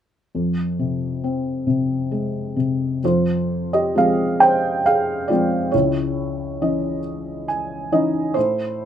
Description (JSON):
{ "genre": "classical, lyrical solo piano", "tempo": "46 BPM (dotted quarters)", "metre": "6/8", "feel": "rubato", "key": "unclear", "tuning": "A4 = 440 Hz", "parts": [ { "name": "felt-muted upright piano", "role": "solo", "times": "0.3-8.9 s", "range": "Db2 to Ab5", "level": "-18 LUFS", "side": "equal", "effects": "none" } ], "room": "light reverb", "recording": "close, detailed microphones", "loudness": "-18 LUFS", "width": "side -9 dB against mid", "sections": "0.3-3.0 A section; 3.0-8.9 B section", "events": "felt piano fill 7.0-8.4", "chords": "0.3 Fm; 5.7 Dbmadd9", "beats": "| 0.34 1.67 | 3.03 4.40 | 5.73 7.04 | 8.36" }